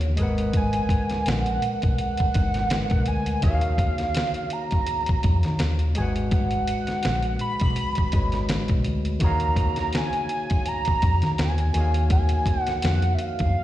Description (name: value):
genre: R&B, neo-soul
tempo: 83 BPM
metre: 4/4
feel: swing 54% on 16ths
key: Eb minor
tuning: A4 = 440 Hz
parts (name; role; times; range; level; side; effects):
- hollow square lead; melody; 0.0-13.6 s; Db5 to Cb6; -28 LUFS; right 2 dB; chorus, slapback echo
- overdriven tine electric piano; accompaniment; 0.0-13.6 s; Eb3 to Gb5; -30 LUFS; left 1 dB; slapback echo
- vintage muted fingered electric bass; bass; 0.0-13.5 s; Ab1 to Eb3; -24 LUFS; equal; none
- dusty soul sampler-style drum kit; drums; 0.0-13.5 s; hi-hat, kick drum, snare drum; -25 LUFS; equal; none
room: digital ambience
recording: live gig heard through the venue's PA, recital hall reverb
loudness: -21 LUFS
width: side -14 dB against mid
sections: 0.0-13.6 A section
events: none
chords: 0.2 Abm9; 3.4 Ebm11; 6.0 Abm7; 9.2 Ebm11